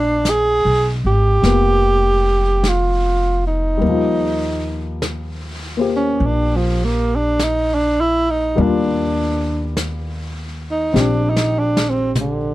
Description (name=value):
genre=jazz ballad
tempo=50 BPM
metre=4/4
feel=swing 66% on 8ths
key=Eb major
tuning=A4 = 443 Hz
part: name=breathy tenor saxophone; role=melody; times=0.0-12.5 s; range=D3 to Ab4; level=-18 LUFS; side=right 2 dB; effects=none
part: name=dark baby grand piano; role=accompaniment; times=0.0-12.5 s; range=F3 to D5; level=-23 LUFS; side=left 5 dB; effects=none
part: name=upright bass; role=bass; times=0.0-12.5 s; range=F1 to Eb2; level=-20 LUFS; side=equal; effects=none
part: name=vintage brush drum kit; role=drums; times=0.2-12.5 s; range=brushed snare drum, hi-hat, snare drum, toms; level=-26 LUFS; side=left 1 dB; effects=none
room=little or no reverb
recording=none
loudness=-15 LUFS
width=side -16 dB against mid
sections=0.0-12.5 A section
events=tenor saxophone solo 0.0-12.5; drum fill 11.0-12.5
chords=0.0 Bb7b9; 3.8 Ebmaj9